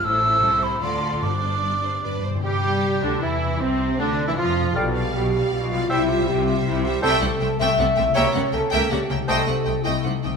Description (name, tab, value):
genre	classical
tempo	157 BPM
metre	3/4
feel	rubato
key	C major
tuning	A4 = 440 Hz
part	clear symphonic violin section	melody	0.0-10.3 s	C4 to G5	-30 LUFS	left 1 dB	none
part	concert flute	second line	0.0-9.5 s	C4 to E6	-25 LUFS	right 1 dB	none
part	warm symphonic violin section	second line	0.0-10.3 s	C4 to E5	-31 LUFS	right 1 dB	none
part	rich symphonic viola section	accompaniment	0.0-10.3 s	G3 to G4	-30 LUFS	equal	none
part	concert harp	arpeggios	0.0-10.4 s	G2 to A4	-29 LUFS	left 10 dB	none
part	rich symphonic cello section	bass	0.0-10.3 s	G2 to G3	-30 LUFS	equal	none
part	warm symphonic double bass section	bass	0.0-10.3 s	G1 to G2	-28 LUFS	right 2 dB	none
part	timpani	percussion	1.2-2.4 s	G2	-30 LUFS	equal	none
part	clear clarinet	second line	2.4-9.4 s	C4 to D5	-31 LUFS	right 1 dB	none
part	warm bassoon	accompaniment	2.4-9.4 s	C3 to G3	-32 LUFS	right 1 dB	none
part	mellow French horn section	sustained chords	2.4-10.4 s	C4 to E5	-24 LUFS	right 1 dB	none
part	clear oboe	second line	2.5-9.4 s	C4 to F5	-30 LUFS	right 1 dB	none
room	wet stone room reverb, RT60 1.4 s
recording	minimal, uncompressed stereo recording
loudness	-19 LUFS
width	side -5 dB against mid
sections	0.0-2.4 A section; 2.4-10.4 B section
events	timpani fill 2.0-2.4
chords	0.0 Am; 0.8 Dm; 1.2 Gsus4; 2.0 G; 2.4 C/G; 3.6 Dm7/C; 4.8 G7/B; 5.9 C; 7.0 Am7/C; 8.2 C#dim7; 9.3 Am7b5/C